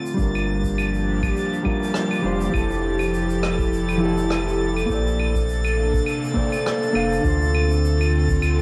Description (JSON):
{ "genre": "sunset chillout", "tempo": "102 BPM", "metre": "4/4", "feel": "swing 55% on 16ths", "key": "unclear", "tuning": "A4 = 440 Hz", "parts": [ { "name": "airy breathy pad", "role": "sustained chords", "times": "0.0-8.6 s", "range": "C3 to A4", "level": "-28 LUFS", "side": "equal", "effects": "chorus" }, { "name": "drifting glass-harmonics texture", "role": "texture", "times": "0.0-8.6 s", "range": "A6", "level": "-34 LUFS", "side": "equal", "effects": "chorus, built-in reverb" }, { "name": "mellow electric guitar", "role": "accompaniment", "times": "0.1-8.6 s", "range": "D3 to F5", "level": "-27 LUFS", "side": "equal", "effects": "tape echo" }, { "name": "shaker, claves and rim click", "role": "drums", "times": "0.1-8.6 s", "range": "none", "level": "-33 LUFS", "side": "equal", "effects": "none" }, { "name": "warm sub bass", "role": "bass", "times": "0.2-8.6 s", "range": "F1 to D2", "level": "-26 LUFS", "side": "equal", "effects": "none" }, { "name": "electronic kick drum", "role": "drums", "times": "0.2-8.4 s", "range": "none", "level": "-28 LUFS", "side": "equal", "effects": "none" } ], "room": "moderate recital hall reverb, RT60 1.5 s, studio reverb", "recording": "worn, warbling old tape, cassette tape, warbly pitch drift", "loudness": "-22 LUFS", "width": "mono", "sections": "0.0-8.6 A section", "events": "none", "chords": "0.0 Gm7; 2.5 Fmaj9; 4.9 Bbmaj9; 7.2 Dm7" }